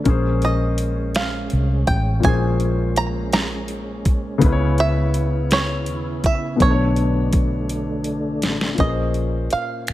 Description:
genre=slow six-eight R&B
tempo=55 BPM (dotted quarters)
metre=6/8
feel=straight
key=unclear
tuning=A4 = 440 Hz
part: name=warm grand piano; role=accompaniment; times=0.0-9.9 s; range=Bb2 to Db5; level=-24 LUFS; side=left 5 dB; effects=none
part: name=tonewheel organ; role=sustained chords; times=0.0-8.8 s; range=Db3 to Fb4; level=-28 LUFS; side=right 1 dB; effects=overdrive, chorus vibrato, slow rotary speaker
part: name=vintage muted fingered electric bass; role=bass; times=0.0-9.9 s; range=A1 to Eb2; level=-22 LUFS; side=equal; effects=none
part: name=smooth R&B drum kit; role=drums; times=0.1-9.9 s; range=finger snaps, hi-hat, kick drum, snare drum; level=-21 LUFS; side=equal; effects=none
part: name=bluegrass banjo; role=melody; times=0.4-9.9 s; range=Db5 to Bb5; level=-24 LUFS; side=right 3 dB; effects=slapback echo
room=light reverb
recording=none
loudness=-18 LUFS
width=side -14 dB against mid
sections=0.0-8.8 A section; 8.8-9.9 B section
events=drum fill 7.7-8.8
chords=0.1 Bbm9; 4.4 Dbm9; 6.6 Bm9; 8.8 Bbm9

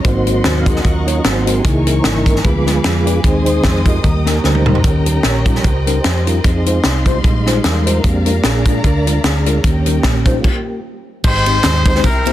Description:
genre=uptempo gospel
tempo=150 BPM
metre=4/4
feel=swing 55% on 8ths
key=Ab major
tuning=A4 = 437 Hz
part: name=mellow tine electric piano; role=accompaniment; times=0.0-12.3 s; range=Ab2 to Db5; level=-22 LUFS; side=left 3 dB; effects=medium stereo tremolo
part: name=mellow tonewheel organ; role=sustained chords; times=0.0-12.3 s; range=Eb3 to C6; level=-19 LUFS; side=right 1 dB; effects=fast rotary speaker, chorus vibrato
part: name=warm studio string section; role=sustained chords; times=0.0-10.4 s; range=Db5 to Eb6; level=-27 LUFS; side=left 2 dB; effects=none
part: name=hollow-body short-scale fingered electric bass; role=bass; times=0.0-12.3 s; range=Ab1 to F2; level=-17 LUFS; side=equal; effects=none
part: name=tight funk drum kit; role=drums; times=0.0-12.3 s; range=crash cymbal, hi-hat, kick drum, ride cymbal, snare drum, toms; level=-16 LUFS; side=equal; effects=none
part: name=clear horn section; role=melody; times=11.2-12.3 s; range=Eb4 to C5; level=-16 LUFS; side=left 2 dB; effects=none
part: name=tambourine and handclaps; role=percussion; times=11.2-12.3 s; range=none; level=-29 LUFS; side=right 7 dB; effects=none
room=light reverb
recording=dense, heavily limited modern master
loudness=-12 LUFS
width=side -13 dB against mid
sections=0.0-11.2 A section; 11.2-12.3 B section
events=tonewheel organ solo 0.0-11.2; drum fill 4.4-4.8; stop 10.4-11.2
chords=0.0 Ab7; 0.8 Ebm7; 1.2 Ab9; 1.6 Dbm6; 2.4 Ddim7; 3.2 Ab/Eb; 4.0 Eb; 4.8 Eb7; 6.4 Fm7; 8.0 Bb7; 9.6 Eb7; 11.2 Abmaj7

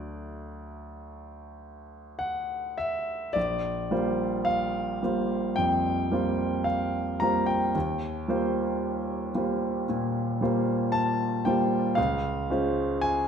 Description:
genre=classical, impressionist solo piano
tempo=49-58 BPM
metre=4/4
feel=rubato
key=D major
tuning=A4 = 440 Hz
part: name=clear grand piano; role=solo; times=0.0-13.3 s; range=Bb1 to Bb5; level=-26 LUFS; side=equal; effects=none
room=wet recital hall reverb, RT60 1.5 s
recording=none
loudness=-25 LUFS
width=side -7 dB against mid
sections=0.0-3.4 A section; 3.4-13.3 B section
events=none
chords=0.0 Dmaj7; 3.4 Bb69; 7.7 Eb69; 12.0 Dbmaj7

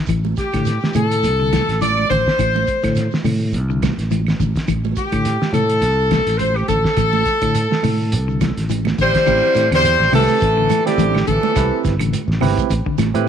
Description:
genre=afrobeat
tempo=105 BPM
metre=4/4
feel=swing 56% on 16ths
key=A minor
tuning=A4 = 441 Hz
part: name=clean electric guitar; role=arpeggios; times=0.1-13.2 s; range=C3 to E3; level=-25 LUFS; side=left 9 dB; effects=harmonic tremolo
part: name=fingered electric bass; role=bass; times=0.1-13.3 s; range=G1 to A2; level=-20 LUFS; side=equal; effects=tube saturation
part: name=cloth-damped thuddy drum kit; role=drums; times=0.1-13.3 s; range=crash cymbal, hi-hat, kick drum, snare drum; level=-24 LUFS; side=equal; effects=none
part: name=claves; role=percussion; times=0.1-13.2 s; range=none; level=-33 LUFS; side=right 14 dB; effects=none
part: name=congas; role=percussion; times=0.1-13.3 s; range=none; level=-26 LUFS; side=right 11 dB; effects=none
part: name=shekere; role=percussion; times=0.1-13.3 s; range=none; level=-30 LUFS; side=right 7 dB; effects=none
part: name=bright horn section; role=melody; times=0.4-11.8 s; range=G4 to D5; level=-18 LUFS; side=left 2 dB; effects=none
part: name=raspy tenor saxophone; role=second line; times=9.0-11.8 s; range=D3 to G3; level=-25 LUFS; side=right 10 dB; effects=slapback echo
part: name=barky tine electric piano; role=accompaniment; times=9.3-13.3 s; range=C4 to D5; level=-23 LUFS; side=right 13 dB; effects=overdrive
room=light reverb, small room ambience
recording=1960s-style stereo with parts hard left and right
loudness=-15 LUFS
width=side -8 dB against mid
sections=0.0-9.3 A section; 9.3-13.3 B section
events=drum fill 8.7-9.3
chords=0.0 Am; 9.3 Am9

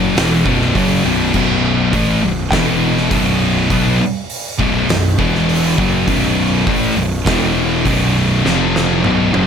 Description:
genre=stoner and doom metal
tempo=101 BPM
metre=4/4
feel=straight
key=unclear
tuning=A4 = 440 Hz
part: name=scooped high-gain guitar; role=riff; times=0.0-9.5 s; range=B1 to B3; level=-20 LUFS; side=equal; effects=distortion
part: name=thick fuzz guitar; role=riff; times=0.0-9.5 s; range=B1 to B3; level=-17 LUFS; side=left 8 dB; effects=distortion
part: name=thick fuzz guitar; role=riff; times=0.0-9.5 s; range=B1 to B3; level=-19 LUFS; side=right 9 dB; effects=distortion
part: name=fuzz picked electric bass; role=bass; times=0.0-9.5 s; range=B0 to B1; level=-22 LUFS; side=right 1 dB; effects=overdrive
part: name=oversized low-tuned drum kit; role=drums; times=0.2-9.5 s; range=crash cymbal, hi-hat, kick drum, snare drum, toms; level=-20 LUFS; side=right 1 dB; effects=none
room=little or no reverb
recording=none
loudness=-12 LUFS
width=side -7 dB against mid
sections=0.0-9.5 A section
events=drum fill 8.5-9.5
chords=0.0 B5; 2.5 E5; 3.1 B5; 5.2 E5; 5.8 B5; 7.3 E5; 7.9 B5; 8.5 F5

